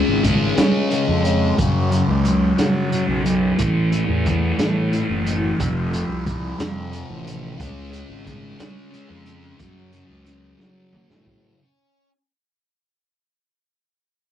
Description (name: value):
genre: psychedelic rock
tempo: 60 BPM (dotted quarters)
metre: 6/8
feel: straight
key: unclear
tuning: A4 = 440 Hz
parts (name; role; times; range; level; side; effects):
- thick fuzz guitar; riff; 0.0-12.1 s; F2 to C#4; -22 LUFS; left 1 dB; distortion, phaser
- fuzz fingered electric bass; bass; 0.1-11.5 s; F1 to F#3; -23 LUFS; equal; overdrive
- vintage drum kit; drums; 0.2-11.4 s; hi-hat, kick drum, snare drum, toms; -23 LUFS; right 1 dB; none
room: wet small room reverb, RT60 0.5 s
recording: rough rehearsal-room recording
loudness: -17 LUFS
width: side -10 dB against mid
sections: 0.0-11.6 A section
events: fade-out 0.0-11.6; drum fill 10.6-11.6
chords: 0.0 C#; 1.6 F#5; 3.6 A5; 5.6 F; 7.6 C#; 9.6 F#m